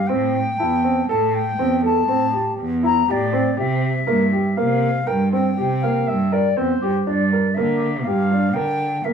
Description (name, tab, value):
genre	contemporary instrumental, chamber music in an uneven meter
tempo	121 BPM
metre	7/4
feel	straight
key	G dorian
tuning	A4 = 440 Hz
part	bright baroque flute	melody	0.0-9.1 s	D5 to Bb5	-23 LUFS	left 4 dB	none
part	warm baby grand piano	arpeggios	0.1-9.1 s	Bb3 to Bb4	-22 LUFS	right 1 dB	none
part	rich cello	bass	0.1-9.1 s	E2 to D3	-21 LUFS	right 2 dB	none
part	large celesta	texture	0.6-9.1 s	A5 to D6	-32 LUFS	left 3 dB	none
part	mellow clarinet	second line	5.8-7.1 s	C5 to F5	-23 LUFS	left 6 dB	none
room	moderate studio reverb, RT60 0.7 s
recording	none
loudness	-17 LUFS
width	side -7 dB against mid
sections	0.0-7.1 A section; 7.1-9.1 B section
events	none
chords	0.1 Am7; 3.6 C7; 7.1 Gm7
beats	| 0.10 0.60 1.09 1.59 2.09 2.59 3.08 | 3.58 4.08 4.58 5.07 5.57 6.07 6.56 | 7.06 7.56 8.05 8.55 9.05